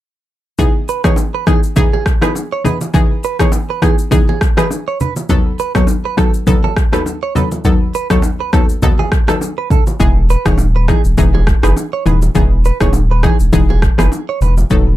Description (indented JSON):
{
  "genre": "afrobeats",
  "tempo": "102 BPM",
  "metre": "4/4",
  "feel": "swing 55% on 16ths",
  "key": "E major",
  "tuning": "A4 = 440 Hz",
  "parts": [
    { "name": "analog pluck", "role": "accompaniment", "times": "0.6-14.9 s", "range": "D#2 to A4", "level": "-17 LUFS", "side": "left 3 dB", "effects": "chorus" },
    { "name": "afro-pop drum kit", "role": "drums", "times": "0.6-14.9 s", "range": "kick drum, rim click, shaker", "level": "-14 LUFS", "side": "equal", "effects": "none" },
    { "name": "congas and bongos", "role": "percussion", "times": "0.6-14.9 s", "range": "none", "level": "-21 LUFS", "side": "right 2 dB", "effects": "none" },
    { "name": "direct-recorded clean electric guitar", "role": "riff", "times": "0.9-14.5 s", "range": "G#4 to C#5", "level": "-21 LUFS", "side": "right 8 dB", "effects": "wide subtle chorus, digital delay" },
    { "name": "saturated sub bass", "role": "bass", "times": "10.0-15.0 s", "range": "D#1 to F#1", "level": "-13 LUFS", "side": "equal", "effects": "none" }
  ],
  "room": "light reverb",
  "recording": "dark, warm production",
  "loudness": "-11 LUFS",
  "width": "side -15 dB against mid",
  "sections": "0.6-15.0 A section",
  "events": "none",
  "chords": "0.6 Emaj7; 5.3 B7/D#; 10.0 Emaj7"
}